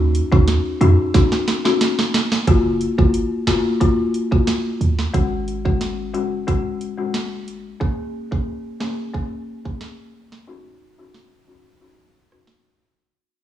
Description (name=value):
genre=dancehall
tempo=90 BPM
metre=4/4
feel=straight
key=unclear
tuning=A4 = 436 Hz
part: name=folk marimba with medium mallets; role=accompaniment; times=0.0-12.5 s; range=Ab3 to Ab4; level=-22 LUFS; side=left 4 dB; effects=sidechain pumping, low-pass filter
part: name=warm 808-style bass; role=bass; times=0.0-7.7 s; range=Gb1 to F2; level=-19 LUFS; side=right 2 dB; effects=none
part: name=island pop drum kit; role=drums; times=0.1-12.6 s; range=hi-hat, kick drum, rim click, snare drum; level=-19 LUFS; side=right 2 dB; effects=cassette tape
room=light reverb, digital ambience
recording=home recording on cassette, studio reverb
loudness=-17 LUFS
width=side -12 dB against mid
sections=0.0-2.5 A section; 2.5-13.1 B section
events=drum fill 1.1-2.5; fade-out 2.5-13.1; filter sweep on marimba 2.5-13.1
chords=0.0 Ebm7; 2.5 Gbmaj7; 5.1 Ab7sus4; 7.8 Bbm7; 10.5 Ebm7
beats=0.48 1.14 1.81 | 2.48 3.14 3.81 4.48 | 5.14 5.81 6.48 7.14 | 7.81 8.48 9.14 9.81 | 10.48 11.14 11.81 12.48